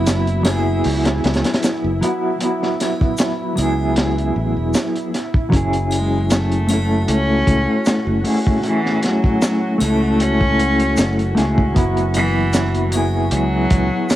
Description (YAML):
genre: trip hop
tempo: 77 BPM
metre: 4/4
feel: swing 53% on 16ths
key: unclear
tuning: A4 = 438 Hz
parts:
  - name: mellow electric guitar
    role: accompaniment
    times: 0.0-14.2 s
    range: F#3 to A4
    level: -19 LUFS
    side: equal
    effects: tremolo, cassette tape
  - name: modern bright fingered electric bass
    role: bass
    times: 0.0-13.9 s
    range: E1 to C#2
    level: -20 LUFS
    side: equal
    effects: none
  - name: bowed-like drone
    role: texture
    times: 0.0-14.2 s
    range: E4 to F#4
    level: -29 LUFS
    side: right 1 dB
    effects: built-in reverb, cassette tape
  - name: crunchy breakbeat drum kit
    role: drums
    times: 0.1-14.2 s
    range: hi-hat, kick drum, snare drum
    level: -20 LUFS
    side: equal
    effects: cassette tape
  - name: egg shaker and triangle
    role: percussion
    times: 0.1-14.2 s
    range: none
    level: -34 LUFS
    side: left 1 dB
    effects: none
  - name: clear cello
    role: melody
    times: 5.9-14.2 s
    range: E3 to C#4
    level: -22 LUFS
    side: equal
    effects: cassette tape, dub echo
room: little or no reverb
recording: home recording on cassette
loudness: -15 LUFS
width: side -14 dB against mid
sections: 0.0-14.2 A section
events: none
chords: 0.0 Esus2/F#; 5.5 F#m7; 11.8 Esus2/F#